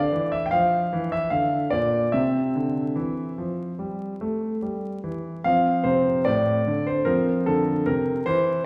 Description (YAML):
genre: classical-period piano sonatina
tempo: 74 BPM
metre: 4/4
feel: straight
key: unclear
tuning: A4 = 440 Hz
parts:
  - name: clear concert grand piano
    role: solo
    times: 0.0-8.7 s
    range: A2 to G5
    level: -24 LUFS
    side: equal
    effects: none
room: wet recital hall reverb, RT60 1.5 s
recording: heard from further back in the room, vinyl crackle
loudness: -24 LUFS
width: mono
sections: 0.0-8.7 A section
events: none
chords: 0.0 Bb; 2.1 C; 5.4 F; 7.1 C